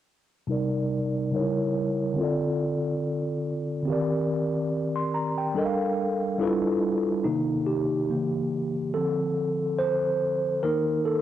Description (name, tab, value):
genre	hip hop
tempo	71 BPM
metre	4/4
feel	swing 56% on 16ths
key	C dorian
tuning	A4 = 440 Hz
part	mellow tine electric piano	accompaniment	0.5-11.2 s	C3 to C6	-24 LUFS	equal	medium stereo tremolo, low-pass filter
room	moderate plate reverb, RT60 3.4 s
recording	dry, gritty hardware recording, cassette tape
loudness	-24 LUFS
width	side -12 dB against mid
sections	0.5-7.2 A section; 7.2-11.2 B section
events	filter sweep on tine electric piano 0.5-7.2; tine electric piano solo 7.2-11.2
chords	0.5 Cm7; 1.3 C#dim7; 2.2 Dm7; 3.9 Cm7/Eb; 5.6 Gm9; 6.4 G7; 7.2 Cm7; 8.1 C#dim7; 8.9 Dm7; 10.6 Eb5